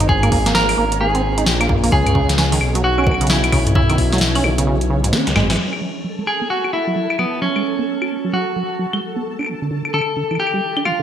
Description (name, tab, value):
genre	IDM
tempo	131 BPM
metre	4/4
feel	swing 62% on 16ths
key	unclear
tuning	A4 = 441 Hz
part	deep acid bass	arpeggios	0.0-11.0 s	C#2 to F#4	-22 LUFS	right 2 dB	digital delay
part	dark detuned saw bass	bass	0.0-5.6 s	G#1 to C#2	-19 LUFS	left 1 dB	none
part	booming analog drum machine	drums	0.0-11.0 s	claves, crash cymbal, hi-hat, snare drum, toms	-20 LUFS	left 1 dB	low-pass filter on snare, low-pass filter on hats, low-pass filter on perc, low-pass filter on toms, low-pass filter on cymbals, low-pass filter on room, gated reverb
part	flickering grainy texture	texture	0.0-11.0 s	C#4 to A4	-30 LUFS	left 1 dB	built-in reverb, analog chorus
part	clean electric guitar	melody	0.1-11.0 s	B3 to A#4	-20 LUFS	right 1 dB	digital delay
part	electronic kick drum	drums	0.1-4.1 s	none	-20 LUFS	left 1 dB	none
room	moderate plate reverb, RT60 2.3 s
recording	bright 1980s-style digital production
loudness	-15 LUFS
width	side -9 dB against mid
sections	0.0-5.6 A section; 5.6-11.0 B section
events	kick drops out 5.1-5.6; drum fill 5.1-5.6; filter sweep on acid bass 5.6-11.0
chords	0.0 A#m7; 1.9 C#m7; 5.6 F#m; 9.3 D5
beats	| 0.09 0.55 1.01 1.46 | 1.92 2.38 2.84 3.30 | 3.75 4.21 4.67 5.13 | 5.59 6.04 6.50 6.96 | 7.42 7.88 8.34 8.79 | 9.25 9.71 10.17 10.62